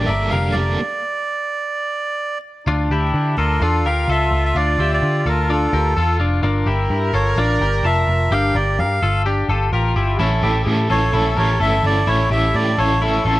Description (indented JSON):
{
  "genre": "indie pop",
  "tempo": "128 BPM",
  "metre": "4/4",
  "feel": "straight",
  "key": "D harmonic minor",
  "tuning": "A4 = 441 Hz",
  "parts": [
    { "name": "melodica", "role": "melody", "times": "0.0-13.4 s", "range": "A4 to F5", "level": "-21 LUFS", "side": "right 1 dB", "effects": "none" },
    { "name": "biting overdriven guitar", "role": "accompaniment", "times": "0.0-0.8, 10.2-13.4 s", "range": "G2 to A4", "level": "-22 LUFS", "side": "right 3 dB", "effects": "tremolo" },
    { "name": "twelve-string electric guitar", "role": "arpeggios", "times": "0.0-13.4 s", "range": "C#4 to A5", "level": "-22 LUFS", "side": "left 4 dB", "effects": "none" },
    { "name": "vintage muted picked electric bass", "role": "bass", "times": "0.0-13.4 s", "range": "F1 to D3", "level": "-19 LUFS", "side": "equal", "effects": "none" },
    { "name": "warm trumpet", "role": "second line", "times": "2.7-13.2 s", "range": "D4 to Bb4", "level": "-26 LUFS", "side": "right 1 dB", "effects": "none" }
  ],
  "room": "light reverb",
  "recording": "vinyl crackle",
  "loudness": "-16 LUFS",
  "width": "side -16 dB against mid",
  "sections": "0.0-2.7 A section; 2.7-13.4 B section",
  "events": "stop 0.8-2.7",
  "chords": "0.0 Gmadd9; 2.7 Dm; 6.4 Gm7; 10.2 A"
}